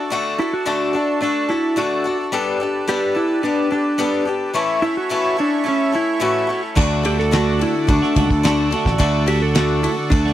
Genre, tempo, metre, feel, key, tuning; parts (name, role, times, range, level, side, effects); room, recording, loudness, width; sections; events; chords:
folk rock and heartland rock; 108 BPM; 4/4; straight; D major; A4 = 440 Hz
picked swing-style acoustic guitar; accompaniment; 0.0-10.3 s; A2 to A4; -21 LUFS; left 4 dB
accordion; sustained chords; 0.0-10.3 s; F#4 to D6; -28 LUFS; right 7 dB; light tremolo tuning
clean lap steel guitar; melody; 0.4-10.3 s; C#4 to A4; -20 LUFS; equal
twelve-string electric guitar; riff; 6.8-10.3 s; D3 to F#4; -23 LUFS; right 4 dB; spring reverb
picked electric bass; bass; 6.8-10.3 s; A1 to D2; -20 LUFS; equal
damped 70s drum kit; drums; 6.8-10.3 s; crash cymbal, kick drum, ride cymbal, snare drum; -21 LUFS; equal
little or no reverb; dry, close 1970s-style studio recording; -16 LUFS; side -12 dB against mid
0.0-10.3 A section
0.0 D; 2.3 Gadd9; 4.6 A; 6.8 D